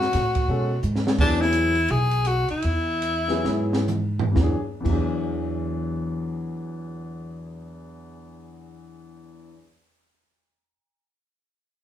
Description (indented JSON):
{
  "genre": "modal jazz",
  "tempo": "121-173 BPM",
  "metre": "4/4",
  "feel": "swing 63% on 8ths",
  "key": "E mixolydian",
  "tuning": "A4 = 440 Hz",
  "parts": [
    { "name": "breathy tenor saxophone", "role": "melody", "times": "0.0-3.9 s", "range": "D4 to G#4", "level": "-24 LUFS", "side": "left 2 dB", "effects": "none" },
    { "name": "upright bass", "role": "bass", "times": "0.0-9.5 s", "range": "B1 to B2", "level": "-26 LUFS", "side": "equal", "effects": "none" },
    { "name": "compact cocktail drum kit", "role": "drums", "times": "0.0-5.0 s", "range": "crash cymbal, hi-hat, kick drum, ride cymbal, snare drum, toms", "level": "-27 LUFS", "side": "right 2 dB", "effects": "none" },
    { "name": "warm concert grand piano", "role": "accompaniment", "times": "0.5-9.6 s", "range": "E2 to A4", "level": "-29 LUFS", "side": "left 2 dB", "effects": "none" }
  ],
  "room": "wet studio reverb, RT60 0.6 s",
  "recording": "band playing live in one room",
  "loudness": "-21 LUFS",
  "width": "side -10 dB against mid",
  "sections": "0.0-1.2 A section; 1.2-4.4 B section; 4.4-8.3 C section",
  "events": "drum fill 0.8-1.2, 3.4-4.4; slowing down 1.2-4.4",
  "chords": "0.0 Eadd9 (rootless); 1.2 Eadd9; 4.4 E9",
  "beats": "0.15 0.49 0.84 | 1.19 1.54 1.89 2.26 | 2.64 3.03 3.45 3.89 | 4.37 4.86 5.36 5.86 | 6.35 6.85 7.35 7.84"
}